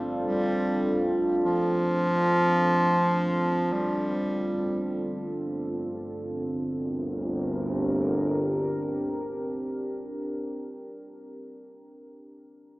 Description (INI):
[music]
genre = dark ambient drone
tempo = free time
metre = none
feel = none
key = G minor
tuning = A4 = 440 Hz
[part]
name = warm bass clarinet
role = melody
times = 0.0-4.9 s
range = F3 to G3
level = -26 LUFS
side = equal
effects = analog delay
[part]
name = deep dark ambient pad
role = sustained chords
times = 0.0-10.3 s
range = C4 to Bb4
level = -28 LUFS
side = right 1 dB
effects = chorus, built-in reverb
[part]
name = analog drone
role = drone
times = 0.0-9.8 s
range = G1 to D2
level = -35 LUFS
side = equal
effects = lush chorus
[sound]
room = wet plate reverb, RT60 2.9 s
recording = echo-heavy mix, small speaker sound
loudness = -24 LUFS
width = side -21 dB against mid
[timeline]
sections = 0.0-6.0 A section; 6.0-10.6 B section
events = none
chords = 0.0 Gsus2; 6.0 Gm